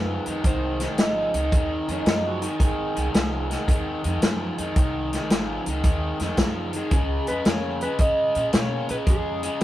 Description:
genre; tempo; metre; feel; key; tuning
electric blues shuffle; 111 BPM; 4/4; swing 67% on 8ths; unclear; A4 = 440 Hz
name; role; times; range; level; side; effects
clean lap steel guitar; melody; 0.0-1.9, 6.8-9.6 s; Ab4 to Eb5; -27 LUFS; right 1 dB; none
raw garage guitar; riff; 0.0-9.6 s; Ab2 to Bb3; -28 LUFS; equal; overdrive
upright bass; bass; 0.0-9.5 s; Ab1 to Cb3; -31 LUFS; equal; none
vintage drum kit; drums; 0.3-9.6 s; hi-hat, kick drum, snare drum; -22 LUFS; equal; none
electric guitar through a small old amp; second line; 1.9-4.2 s; Eb4 to Ab4; -31 LUFS; right 2 dB; spring reverb
room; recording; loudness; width
moderate studio reverb, RT60 0.5 s; rough rehearsal-room recording; -21 LUFS; side -14 dB against mid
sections
0.0-9.6 A section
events
none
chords
0.0 Ab7; 6.9 Db

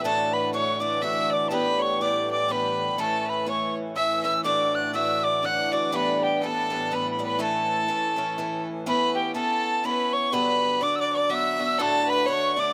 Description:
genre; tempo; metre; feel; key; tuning
celtic folk; 122 BPM; 3/4; swing 57% on 8ths; A mixolydian; A4 = 440 Hz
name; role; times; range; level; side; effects
bright wooden whistle; melody; 0.0-12.7 s; G5 to F#6; -28 LUFS; equal; none
clear fiddle; second line; 0.0-12.7 s; G4 to F#5; -30 LUFS; equal; none
picked swing-style acoustic guitar; accompaniment; 0.0-12.7 s; D2 to G4; -32 LUFS; equal; slapback echo
musette accordion; drone; 0.0-8.9 s; A2 to E3; -37 LUFS; equal; none
room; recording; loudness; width
light reverb; recorded outdoors, with no room sound; -25 LUFS; mono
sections
0.0-8.9 A section; 8.9-12.7 A section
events
none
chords
0.0 D; 1.5 G; 3.0 A; 4.5 D/A; 5.9 G6; 7.4 A; 8.9 Aadd9; 10.3 Gmaj7; 11.8 D

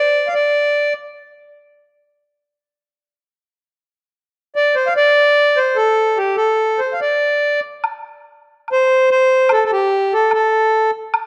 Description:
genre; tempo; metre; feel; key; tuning
chinese traditional, Chinese chamber ensemble; 72 BPM; 2/4; rubato; D yu mode; A4 = 440 Hz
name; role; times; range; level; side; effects
accordion; melody; 0.0-0.9, 4.6-10.9 s; G4 to F5; -16 LUFS; equal; none
woodblock; percussion; 7.8-11.3 s; none; -25 LUFS; equal; none
room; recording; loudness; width
moderate recital hall reverb, RT60 1.7 s; dark, warm production; -16 LUFS; mono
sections
0.0-7.8 A section; 7.8-11.3 B section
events
none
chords
none

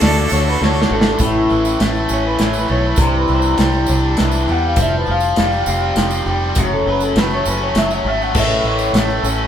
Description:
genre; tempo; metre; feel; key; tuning
folk rock and heartland rock; 101 BPM; 3/4; straight; unclear; A4 = 440 Hz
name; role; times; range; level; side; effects
bright harmonica; melody; 0.0-0.9 s; A4; -22 LUFS; right 1 dB; none
electric guitar through a small old amp; second line; 0.0-9.2 s; F#4 to F#5; -21 LUFS; left 1 dB; none
picked old ladder-braced acoustic guitar; accompaniment; 0.0-9.5 s; F#2 to A4; -22 LUFS; left 3 dB; none
tonewheel organ; sustained chords; 0.0-9.5 s; G3 to D5; -31 LUFS; right 1 dB; none
biting overdriven guitar; riff; 0.0-9.5 s; F#2 to F#4; -20 LUFS; equal; none
fingered electric bass; bass; 0.0-9.5 s; F1 to E2; -20 LUFS; right 1 dB; none
loose indie drum kit; drums; 0.0-9.1 s; crash cymbal, hi-hat, kick drum, ride cymbal, snare drum; -18 LUFS; equal; none
tambourine; percussion; 0.2-9.4 s; none; -32 LUFS; right 4 dB; none
room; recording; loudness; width
light reverb; band playing live in one room; -14 LUFS; side -9 dB against mid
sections
0.0-1.2 A section; 1.2-9.5 B section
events
drum fill 0.6-1.2; clean electric guitar solo 1.2-9.5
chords
0.0 D; 1.2 A; 3.0 Cadd9; 4.8 Fsus2; 6.6 F#madd9; 8.4 A

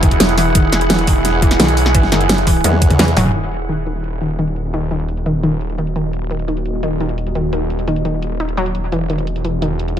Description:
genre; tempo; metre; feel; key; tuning
dark technical drum and bass; 172 BPM; 4/4; straight; Eb phrygian; A4 = 440 Hz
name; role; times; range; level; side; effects
deep dark ambient pad; sustained chords; 0.0-10.0 s; G#3 to F#5; -22 LUFS; right 2 dB; chorus, built-in reverb, sidechain pumping
wide unison pluck; arpeggios; 0.0-10.0 s; Eb3 to Eb4; -20 LUFS; left 1 dB; sidechain pumping, dub echo
snarling distorted saw bass; bass; 0.0-10.0 s; Eb1 to B1; -20 LUFS; equal; distortion, sidechain pumping
dubstep drum kit; drums; 0.0-10.0 s; crash cymbal, hi-hat, snare drum, toms; -17 LUFS; equal; low-pass filter on hats, low-pass filter on cymbals, low-pass filter on snare, low-pass filter on toms
electronic kick drum; drums; 0.0-3.0 s; none; -14 LUFS; equal; none
formant-sweep wobble bass; bass; 2.6-3.2 s; E2; -15 LUFS; equal; chorus
room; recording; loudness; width
light reverb; none; -14 LUFS; side -10 dB against mid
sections
0.0-3.3 A section; 3.3-10.0 B section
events
drop 0.0-3.3; drum fill 2.6-3.3; filter sweep on drum 3.3-10.0; filter sweep on ambient pad 3.3-10.0; filter sweep on synth arpeggio sound 3.3-10.0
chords
0.0 Eadd9; 3.3 Ebm; 8.9 Eadd9

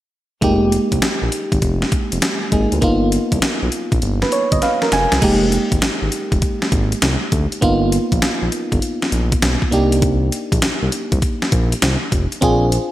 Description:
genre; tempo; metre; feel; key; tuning
R&B, new jack swing; 100 BPM; 4/4; swing 66% on 16ths; F dorian; A4 = 440 Hz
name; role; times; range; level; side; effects
FM electric piano; accompaniment; 0.4-12.9 s; Ab3 to Ab5; -19 LUFS; right 1 dB; chorus
smooth synth bass; bass; 0.4-12.8 s; F1 to D2; -19 LUFS; equal; none
clean 12-bit digital drum machine; drums; 0.4-12.9 s; crash cymbal, hi-hat, kick drum, snare drum; -19 LUFS; equal; overdrive, gated reverb
room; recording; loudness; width
moderate lush hall reverb, RT60 1.8 s; bright 1980s-style digital production; -15 LUFS; side -14 dB against mid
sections
0.4-5.2 A section; 5.2-12.9 B section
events
FM electric piano fill 4.3-5.2; drum fill 4.6-5.2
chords
0.4 Fm11; 2.8 G7alt; 4.9 Fmadd11; 5.2 Fm11; 7.6 G7alt; 9.7 Cm7

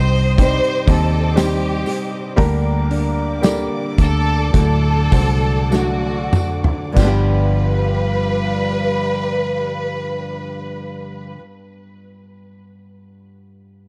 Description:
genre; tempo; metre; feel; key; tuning
pop ballad; 46-63 BPM; 4/4; straight; unclear; A4 = 440 Hz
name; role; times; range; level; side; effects
warm studio violin section; melody; 0.0-11.4 s; F#4 to C5; -25 LUFS; equal; tape echo
clear concert grand piano; accompaniment; 0.0-13.9 s; G2 to C5; -26 LUFS; equal; none
warm studio string section; sustained chords; 0.0-11.4 s; G3 to Eb6; -33 LUFS; equal; none
nylon-string guitar; arpeggios; 0.0-11.5 s; G2 to G4; -27 LUFS; equal; none
vintage muted fingered electric bass; bass; 0.0-11.3 s; G1 to Eb2; -21 LUFS; equal; none
loose indie drum kit; drums; 0.1-7.3 s; crash cymbal, hi-hat, kick drum, snare drum, toms; -19 LUFS; equal; none
tambourine; percussion; 0.4-7.6 s; none; -42 LUFS; equal; none
room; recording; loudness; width
light reverb; none; -18 LUFS; mono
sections
0.0-7.0 A section; 7.0-12.2 B section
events
slowing down 0.0-7.0; drum fill 5.7-7.0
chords
0.0 Cm; 2.4 Gm/D; 4.5 D; 7.0 G7

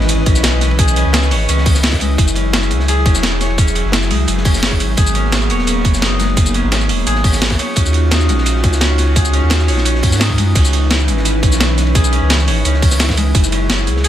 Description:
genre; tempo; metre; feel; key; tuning
liquid drum and bass; 172 BPM; 4/4; straight; C# dorian; A4 = 440 Hz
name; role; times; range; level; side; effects
airy breathy pad; sustained chords; 0.0-14.1 s; E3 to D#5; -21 LUFS; equal; chorus, sidechain pumping
concert harp; arpeggios; 0.0-14.1 s; G#3 to C#5; -21 LUFS; left 2 dB; digital delay
warm sub bass; bass; 0.0-14.1 s; D#1 to G#2; -16 LUFS; equal; none
crunchy breakbeat drum kit; drums; 0.0-14.1 s; hi-hat, ride cymbal, snare drum; -24 LUFS; equal; high-pass filter on cymbals, small room ambience, high-pass filter on hats, high-pass filter on snare, high-pass filter on room
impact; sound effects; 0.0-0.8 s; none; barely audible; none; none
breakbeat sampler-style drum kit; drums; 0.1-14.1 s; crash cymbal, hi-hat, shaker, snare drum; -18 LUFS; equal; small room ambience
electronic kick drum; drums; 0.3-13.4 s; none; -14 LUFS; equal; small room ambience
room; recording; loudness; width
small room ambience; none; -12 LUFS; side -11 dB against mid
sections
0.0-14.1 A section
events
impact 0.0-0.8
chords
0.0 C#m9; 2.2 F#sus2; 4.8 G#m9; 7.6 D#m9; 10.6 C#m9; 13.3 F#sus2

